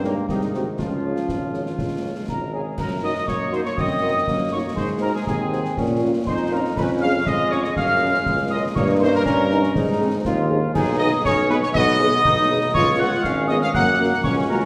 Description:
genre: military-style march for wind band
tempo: 120 BPM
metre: 2/4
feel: straight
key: Db major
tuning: A4 = 440 Hz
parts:
  - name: dark trumpet section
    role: melody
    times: 0.0-14.6 s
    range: Eb4 to F#5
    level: -27 LUFS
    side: equal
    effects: none
  - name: dark euphonium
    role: second line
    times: 0.0-2.2 s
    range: C3 to G3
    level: -32 LUFS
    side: equal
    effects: none
  - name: mellow French horn section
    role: accompaniment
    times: 0.0-14.6 s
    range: A#3 to Db5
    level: -31 LUFS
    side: equal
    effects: none
  - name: bright trombone section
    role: sustained chords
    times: 0.0-14.7 s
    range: Eb3 to F4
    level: -30 LUFS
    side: equal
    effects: none
  - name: clear tuba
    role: bass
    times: 0.0-14.7 s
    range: Ab1 to Bb2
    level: -26 LUFS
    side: equal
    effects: none
  - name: concert snare drum, concert bass drum and clash cymbals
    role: drums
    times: 0.0-14.7 s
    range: none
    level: -31 LUFS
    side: equal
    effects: none
  - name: wooden piccolo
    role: second line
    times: 2.3-14.6 s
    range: Ab5 to F#6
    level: -28 LUFS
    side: equal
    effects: none
room: wet concert hall reverb, RT60 2.0 s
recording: recorded in a church or concert hall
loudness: -21 LUFS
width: mono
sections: 0.0-2.8 A section; 2.8-14.7 B section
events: none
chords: 0.3 Ab7; 0.8 Db; 2.8 Ebm/Gb; 4.8 Ab7; 5.8 Bbm; 6.8 Db/F; 7.8 Gb; 8.8 Eb7/G; 9.8 Ab; 10.8 G#m/B; 12.7 C#7; 13.7 F#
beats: 0.29 | 0.79 1.29 | 1.79 2.29 | 2.78 3.28 | 3.78 4.28 | 4.78 5.27 | 5.77 6.27 | 6.77 7.26 | 7.76 8.26 | 8.76 9.26 | 9.76 10.25 | 10.75 11.25 | 11.75 12.25 | 12.74 13.24 | 13.74 14.24

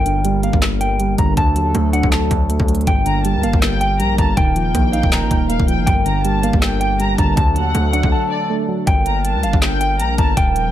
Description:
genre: hip hop, trap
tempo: 160 BPM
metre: 4/4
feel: half-time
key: G minor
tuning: A4 = 440 Hz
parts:
  - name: mellow electric guitar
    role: melody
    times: 0.0-10.7 s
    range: F5 to Bb5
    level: -22 LUFS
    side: equal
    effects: low-pass filter, ping-pong delay
  - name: soft electric-piano-like synth keys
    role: accompaniment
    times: 0.0-8.9 s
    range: G2 to Eb4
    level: -21 LUFS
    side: right 3 dB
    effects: chorus, low-pass filter
  - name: hollow soft pad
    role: sustained chords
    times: 0.0-10.7 s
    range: F3 to Bb4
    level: -25 LUFS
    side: left 1 dB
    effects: chorus
  - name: distorted 808-style bass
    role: bass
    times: 0.0-10.7 s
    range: Eb1 to Eb2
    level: -20 LUFS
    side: equal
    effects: distortion
  - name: trap drum kit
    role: drums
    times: 0.1-10.7 s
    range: handclaps, hi-hat, kick drum, snare drum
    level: -18 LUFS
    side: equal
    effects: none
  - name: dark studio violin section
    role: second line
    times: 3.1-10.7 s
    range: D5 to Bb5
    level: -25 LUFS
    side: left 2 dB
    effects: ping-pong delay
room: light reverb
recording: none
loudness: -14 LUFS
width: side -12 dB against mid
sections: 0.0-8.9 A section; 8.9-10.7 A section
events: break 8.1-8.9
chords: 0.0 Gm; 1.4 D; 2.9 Gm; 4.4 Ebsus2; 5.9 Gm; 7.4 D; 8.9 Gm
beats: 0.25 0.62 1.00 | 1.37 1.75 2.12 2.50 | 2.87 3.25 3.62 4.00 | 4.37 4.75 5.12 5.50 | 5.87 6.25 6.62 7.00 | 7.37 7.75 8.12 8.50 | 8.87 9.25 9.62 10.00 | 10.37

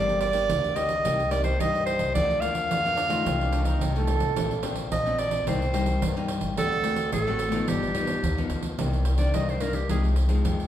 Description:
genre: samba and choro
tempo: 108 BPM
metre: 4/4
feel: straight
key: G minor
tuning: A4 = 440 Hz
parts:
  - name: clear clarinet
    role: melody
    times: 0.0-10.1 s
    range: G4 to F5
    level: -26 LUFS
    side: right 1 dB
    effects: none
  - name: nylon-string guitar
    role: accompaniment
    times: 0.0-10.7 s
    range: G2 to G4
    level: -30 LUFS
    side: left 4 dB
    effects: none
  - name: upright bass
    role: bass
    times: 0.0-10.7 s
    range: G1 to G2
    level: -28 LUFS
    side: equal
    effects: none
  - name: pandeiro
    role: percussion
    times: 0.1-10.7 s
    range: none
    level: -31 LUFS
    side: right 4 dB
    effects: none
  - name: clear trombone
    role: second line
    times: 3.0-4.7 s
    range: D4 to A4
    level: -31 LUFS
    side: right 6 dB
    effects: none
room: wet recital hall reverb, RT60 1.3 s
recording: recorded in a church or concert hall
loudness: -23 LUFS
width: side -11 dB against mid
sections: 0.0-8.8 A section; 8.8-10.7 B section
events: clarinet solo 8.8-10.7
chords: 0.0 Gm; 1.0 Cm7; 2.2 Bb/D; 3.3 F7/C; 4.4 Bbadd9; 5.5 Cm7; 6.6 D7; 7.7 G7b13; 8.8 Cm9; 9.9 Fm7/C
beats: 0.49 1.05 1.60 | 2.15 2.71 3.26 3.81 | 4.37 4.92 5.47 6.02 | 6.58 7.13 7.68 8.24 | 8.79 9.34 9.90 10.45

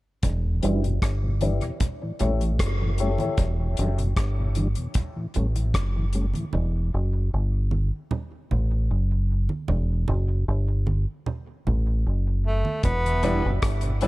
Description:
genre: dub reggae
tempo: 76 BPM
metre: 4/4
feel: straight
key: E dorian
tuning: A4 = 440 Hz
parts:
  - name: deep dub fingered electric bass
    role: bass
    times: 0.2-14.1 s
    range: E1 to A1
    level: -23 LUFS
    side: equal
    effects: none
  - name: damped 70s drum kit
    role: drums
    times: 0.2-6.5, 12.8-14.1 s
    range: hi-hat, kick drum, rim click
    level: -27 LUFS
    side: equal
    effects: none
  - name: congas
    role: percussion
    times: 0.2-13.4 s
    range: none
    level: -32 LUFS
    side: right 3 dB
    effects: dub echo
  - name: mellow tonewheel organ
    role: accompaniment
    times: 0.4-6.5, 13.1-14.1 s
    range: E2 to D4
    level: -32 LUFS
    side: left 1 dB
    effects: chorus vibrato, low-pass filter
  - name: mellow electric guitar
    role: accompaniment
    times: 0.6-0.8, 13.2-14.1 s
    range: G3 to E4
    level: -32 LUFS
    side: right 4 dB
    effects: low-pass filter, dub echo
  - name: bright upright piano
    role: stabs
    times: 0.6-3.4, 13.2-14.1 s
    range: E4 to D5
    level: -31 LUFS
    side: left 5 dB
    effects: low-pass filter, dub echo
  - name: breathy tenor saxophone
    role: melody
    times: 12.5-13.5 s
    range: A3 to B3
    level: -27 LUFS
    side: equal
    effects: dub echo
room: studio reverb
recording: none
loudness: -22 LUFS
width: side -19 dB against mid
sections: 0.2-12.8 A section; 12.8-14.1 B section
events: part muted 6.5-12.8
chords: 0.2 Em7; 1.8 A7; 3.4 Em7; 5.0 A7; 6.5 Em; 8.1 F#m; 9.7 Em; 11.3 F#m; 12.8 Em7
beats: | 0.23 1.02 1.80 2.59 | 3.38 4.17 4.96 5.75 | 6.53 7.32 8.11 8.90 | 9.69 10.47 11.26 12.05 | 12.84 13.62

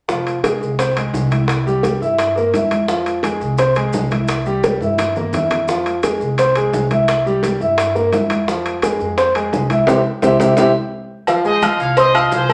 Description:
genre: latin, salsa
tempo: 172 BPM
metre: 4/4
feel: straight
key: F minor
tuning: A4 = 440 Hz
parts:
  - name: warm concert grand piano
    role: accompaniment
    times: 0.1-12.5 s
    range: F3 to F6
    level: -19 LUFS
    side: equal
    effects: none
  - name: upright bass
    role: bass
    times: 0.1-12.5 s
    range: F1 to G2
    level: -26 LUFS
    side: equal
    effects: none
  - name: bongos and cowbell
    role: percussion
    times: 0.1-12.5 s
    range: none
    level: -26 LUFS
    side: equal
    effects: none
  - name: congas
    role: percussion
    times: 0.1-12.5 s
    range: none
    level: -29 LUFS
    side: equal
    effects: none
  - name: maracas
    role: percussion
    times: 0.1-12.5 s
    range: none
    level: -40 LUFS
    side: equal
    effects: none
  - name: timbales and agogo bells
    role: percussion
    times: 0.3-12.5 s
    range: none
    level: -26 LUFS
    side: equal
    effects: none
  - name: bright trumpet section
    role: melody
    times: 11.5-12.5 s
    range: Ab4 to F5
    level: -21 LUFS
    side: equal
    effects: none
room: wet large studio reverb, RT60 0.8 s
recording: none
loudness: -17 LUFS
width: mono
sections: 0.1-11.3 A section; 11.3-12.5 B section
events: drum fill 4.8-5.7, 9.9-11.3; band accent 9.9-11.3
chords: 0.1 Fm; 1.5 C7; 2.9 Fm; 4.3 C7; 5.7 Fm; 7.1 C7; 8.5 Fm; 9.9 C; 11.3 Fm7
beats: | 0.09 0.44 0.79 1.14 | 1.49 1.84 2.19 2.54 | 2.89 3.24 3.59 3.94 | 4.29 4.63 4.99 5.33 | 5.68 6.03 6.38 6.73 | 7.08 7.43 7.78 8.13 | 8.48 8.83 9.18 9.53 | 9.88 10.23 10.58 10.93 | 11.28 11.62 11.97 12.32

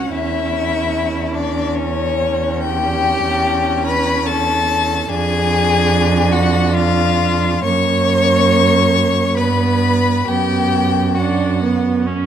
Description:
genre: classical, slow romantic movement for string quartet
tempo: 65-75 BPM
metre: 3/4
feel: rubato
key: unclear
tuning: A4 = 436 Hz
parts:
  - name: warm violin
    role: melody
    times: 0.0-12.1 s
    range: C#5 to C#6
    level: -20 LUFS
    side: left 9 dB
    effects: none
  - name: clear violin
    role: second line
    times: 0.0-12.1 s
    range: C#4 to C#5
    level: -20 LUFS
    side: left 2 dB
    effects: none
  - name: rich viola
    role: accompaniment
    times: 0.0-12.3 s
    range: A#3 to D4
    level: -22 LUFS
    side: right 4 dB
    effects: none
  - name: clear cello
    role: bass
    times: 0.0-12.3 s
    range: C#2 to G2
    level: -18 LUFS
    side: right 4 dB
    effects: none
room: moderate scoring stage reverb, RT60 1.8 s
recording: none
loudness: -14 LUFS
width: side -9 dB against mid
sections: 0.0-12.3 A section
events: none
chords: 0.1 C#m/E; 5.1 Fm6; 7.6 F#; 9.4 G; 10.3 Bm/F#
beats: | 0.11 0.94 1.78 | 2.65 3.46 4.27 | 5.09 5.91 6.74 | 7.63 8.50 9.37 | 10.27 11.18 12.08

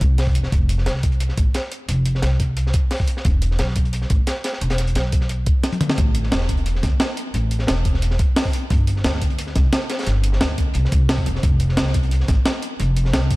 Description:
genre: liquid drum and bass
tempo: 176 BPM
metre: 4/4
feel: straight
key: unclear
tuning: A4 = 440 Hz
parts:
  - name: upright bass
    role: bass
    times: 0.0-13.4 s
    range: E1 to D2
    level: -20 LUFS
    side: equal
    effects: none
  - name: breakbeat sampler-style drum kit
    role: drums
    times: 0.0-13.4 s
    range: hi-hat, snare drum, toms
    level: -24 LUFS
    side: equal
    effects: none
  - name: crunchy breakbeat drum kit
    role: drums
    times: 0.0-13.4 s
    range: hi-hat, snare drum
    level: -29 LUFS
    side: equal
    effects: high-pass filter on hats, high-pass filter on snare, high-pass filter on room
  - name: electronic kick drum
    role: drums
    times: 0.0-13.4 s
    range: none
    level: -19 LUFS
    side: equal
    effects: none
room: little or no reverb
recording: dark, warm production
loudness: -17 LUFS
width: side -21 dB against mid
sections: 0.0-13.4 A section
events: drum fill 5.6-6.0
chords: none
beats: 0.18 | 0.53 0.87 1.21 1.55 | 1.89 2.23 2.57 2.91 | 3.25 3.59 3.93 4.28 | 4.62 4.96 5.30 5.64 | 5.98 6.32 6.66 7.00 | 7.34 7.68 8.03 8.37 | 8.71 9.05 9.39 9.73 | 10.07 10.41 10.75 11.09 | 11.43 11.78 12.12 12.46 | 12.80 13.14

